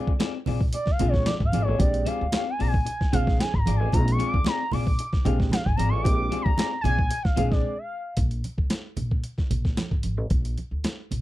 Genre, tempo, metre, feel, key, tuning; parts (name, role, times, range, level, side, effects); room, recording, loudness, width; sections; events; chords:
funk; 113 BPM; 4/4; straight; Bb mixolydian; A4 = 440 Hz
electric guitar at the edge of break-up; accompaniment; 0.0-7.5 s; C4 to F5; -33 LUFS; left 11 dB
warm upright piano; stabs; 0.0-7.7 s; Ab3 to Ab4; -31 LUFS; right 4 dB
upright bass; bass; 0.1-11.2 s; Ab1 to D2; -26 LUFS; equal
breakbeat sampler-style drum kit; drums; 0.1-11.2 s; hi-hat, kick drum, snare drum; -25 LUFS; equal
congas; percussion; 0.2-11.2 s; -32 LUFS; right 4 dB
gliding portamento lead; melody; 0.7-8.2 s; Db5 to D6; -29 LUFS; equal; chorus
little or no reverb; dry, close 1970s-style studio recording; -22 LUFS; side -16 dB against mid
0.0-8.2 A section; 8.2-11.2 B section
soft synth lead solo 0.0-8.2; break 7.6-8.2
0.0 Bb9; 8.2 N.C.